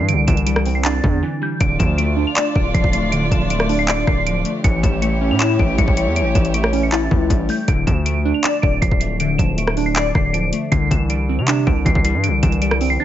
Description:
hip hop, trap; 158 BPM; 4/4; half-time; D minor; A4 = 440 Hz
delicate synth tine bell; melody; 0.0-13.0 s; G6 to F7; -24 LUFS; right 1 dB; chorus, phaser, low-pass filter
glassy wavetable pluck; accompaniment; 0.0-13.0 s; D3 to D5; -21 LUFS; equal; chorus, low-pass filter
distorted 808-style bass; bass; 0.0-13.0 s; D1 to C3; -20 LUFS; equal; distortion
trap drum kit; drums; 0.1-12.9 s; handclaps, hi-hat, kick drum, rim click; -19 LUFS; equal
dark chamber string section; sustained chords; 1.6-7.7 s; A3 to D5; -24 LUFS; equal
light reverb; nothing above 7.7 kHz; -15 LUFS; side -12 dB against mid
0.0-7.7 A section; 7.7-13.0 A section
break 1.2-1.6
0.0 Cadd9; 1.6 Dm; 4.6 A7; 7.7 Dm; 10.7 Cadd9

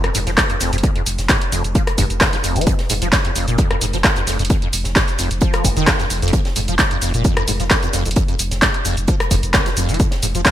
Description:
driving peak-time techno; 131 BPM; 4/4; straight; F minor; A4 = 440 Hz
acid bass, saw; riff; 0.0-10.5 s; F1 to F3; -23 LUFS; equal; ensemble chorus, sidechain pumping, ping-pong delay
punchy analog drum machine; drums; 0.0-10.5 s; handclaps, hi-hat, rim click, shaker; -19 LUFS; equal; sidechain pumping on hats, sidechain pumping on perc, sidechain pumping on cymbals, gated reverb
saturated sub bass; bass; 0.1-10.5 s; F1; -24 LUFS; equal; sidechain pumping, low-pass filter
compact cocktail drum kit; drums; 0.2-10.5 s; hi-hat, snare drum; -28 LUFS; right 2 dB; sidechain pumping on hats, high-pass filter on hats, high-pass filter on snare, high-pass filter on room, gated reverb
electronic kick drum; drums; 0.4-10.5 s; -18 LUFS; equal; overdrive
light reverb; bright 1980s-style digital production; -15 LUFS; side -12 dB against mid
0.0-10.5 A section
0.0 F5

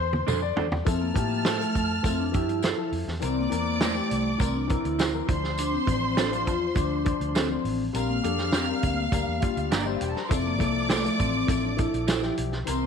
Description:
uptempo 1960s-style soul; 102 BPM; 4/4; straight; F major; A4 = 440 Hz
warm symphonic violin section; second line; 0.0-12.9 s; D4 to F6; -32 LUFS; right 1 dB
warm baby grand piano; accompaniment; 0.0-12.9 s; E3 to D5; -32 LUFS; left 11 dB
vintage muted fingered electric bass; bass; 0.0-12.9 s; E1 to A2; -31 LUFS; right 2 dB
warm soul drum kit; drums; 0.1-12.8 s; hi-hat, kick drum, snare drum, toms; -28 LUFS; right 1 dB
electric guitar through a small old amp; stabs; 0.3-12.2 s; D4 to C5; -33 LUFS; right 13 dB
tambourine; percussion; 0.3-12.8 s; -43 LUFS; left 11 dB
vibraphone with soft mallets; melody; 0.9-12.9 s; A3 to F4; -29 LUFS; left 1 dB
light reverb, small room ambience; 1960s-style stereo with parts hard left and right; -23 LUFS; side -6 dB against mid
0.9-12.9 A section
drum fill 0.0-0.9
0.0 F6; 0.9 Fmaj7; 3.2 C7; 5.3 Dm7; 7.9 Bb6; 10.3 Fmaj7

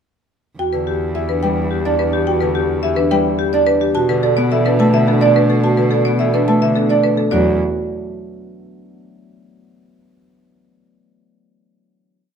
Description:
classical, minimalist pattern music; 107 BPM; 3/4; straight; E minor; A4 = 440 Hz
marimba with hard mallets; melody; 0.6-7.6 s; G4 to A5; -20 LUFS; left 7 dB
marimba with medium mallets; arpeggios; 0.6-7.6 s; D4 to D5; -19 LUFS; right 7 dB
rich cello; bass; 0.6-7.6 s; E2 to B2; -21 LUFS; right 2 dB
Celtic harp; accompaniment; 0.7-9.0 s; D3 to D4; -20 LUFS; left 2 dB
moderate large studio reverb, RT60 1.3 s; minimal, uncompressed stereo recording; -14 LUFS; side -7 dB against mid
0.6-7.3 A section; 7.3-9.0 final chord
0.6 Em7; 4.0 B7sus4; 7.3 E5

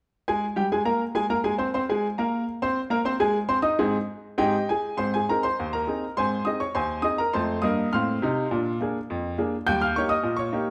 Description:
ragtime piano; 102 BPM; 2/4; straight; Ab major; A4 = 440 Hz
clear upright piano; solo; 0.3-10.7 s; Eb2 to G6; -25 LUFS; equal
moderate large studio reverb, RT60 1.2 s; band playing live in one room; -25 LUFS; mono
0.3-5.0 A section; 5.0-10.7 B section
0.3 Ab; 7.3 F7; 8.5 Bb7; 9.7 Eb7

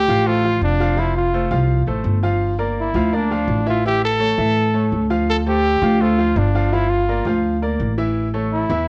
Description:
latin; 167 BPM; 4/4; straight; D minor; A4 = 439 Hz
warm trumpet; melody; 0.0-8.9 s; D4 to A4; -22 LUFS; equal
bright baby grand piano; accompaniment; 0.0-8.8 s; E3 to F5; -25 LUFS; equal
upright bass; bass; 0.0-8.9 s; F1 to A2; -22 LUFS; equal
light reverb; worn, warbling old tape, cassette tape, warbly pitch drift; -19 LUFS; mono
0.0-8.9 A section
0.0 Dm7; 1.0 F; 2.4 Gm7; 3.8 A; 5.3 Dm7; 6.7 Gm7; 8.2 A

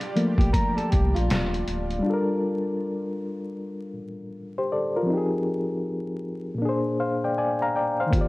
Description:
lo-fi hip hop; 79 BPM; 4/4; swing 64% on 16ths; G minor; A4 = 442 Hz
barky reed electric piano; accompaniment; 0.0-8.3 s; Bb2 to Bb5; -25 LUFS; left 1 dB; overdrive, fast tremolo, cassette tape
lush unison pad; sustained chords; 0.0-2.0 s; G3 to D5; -37 LUFS; right 1 dB; chorus
trip hop sampler-style drum kit; drums; 0.0-2.0, 8.1-8.3 s; hi-hat, kick drum, snare drum; -24 LUFS; equal
electric guitar through a small old amp; second line; 0.4-2.0 s; F4 to Bb4; -31 LUFS; equal; analog delay
sub bass with octave; bass; 0.4-2.0 s; D1 to C2; -26 LUFS; equal
moderate spring reverb, RT60 2.2 s; vinyl crackle; -23 LUFS; side -20 dB against mid
0.0-2.1 A section; 2.1-8.3 B section
reed electric piano solo 0.0-2.1
0.0 Gm7; 5.1 Fm7; 6.6 Bb7

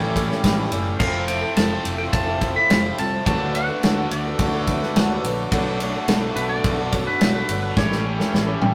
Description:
folk rock and heartland rock; 106 BPM; 4/4; straight; D major; A4 = 443 Hz
twangy electric guitar; melody; 0.0-8.7 s; B4 to B5; -28 LUFS; equal
picked old ladder-braced acoustic guitar; accompaniment; 0.0-8.7 s; A2 to A4; -30 LUFS; equal
accordion; sustained chords; 0.0-8.7 s; B3 to A4; -32 LUFS; equal
biting overdriven guitar; riff; 0.0-8.7 s; F2 to G4; -32 LUFS; equal
picked electric bass; bass; 0.0-8.7 s; F1 to D2; -30 LUFS; equal
natural country drum kit; drums; 0.2-8.7 s; crash cymbal, kick drum, ride cymbal, snare drum, toms; -25 LUFS; equal
clean lap steel guitar; second line; 8.6-8.7 s; G5; -26 LUFS; equal
wet studio ambience, RT60 0.5 s; rough rehearsal-room recording, tube saturation; -21 LUFS; mono
0.0-8.7 A section
drum fill 7.8-8.7
0.0 A7; 1.0 Fmaj7; 3.3 D6; 5.5 Bm7; 7.8 A7

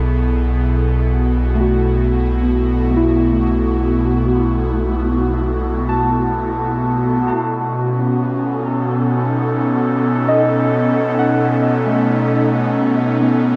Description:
ambient; 66 BPM; 4/4; straight; B mixolydian; A4 = 441 Hz
airy breathy pad; sustained chords; 0.0-13.6 s; B2 to A4; -19 LUFS; equal; chorus
muted felt-like synth keys; arpeggios; 0.0-13.6 s; A3 to A5; -22 LUFS; equal; chorus, analog delay
warm sub bass; bass; 0.0-7.3 s; B1; -22 LUFS; equal
moderate spring reverb, RT60 2.4 s; echo-heavy mix; -17 LUFS; mono
0.0-7.4 A section; 7.4-13.6 B section
0.0 F#m7/B; 7.4 B7

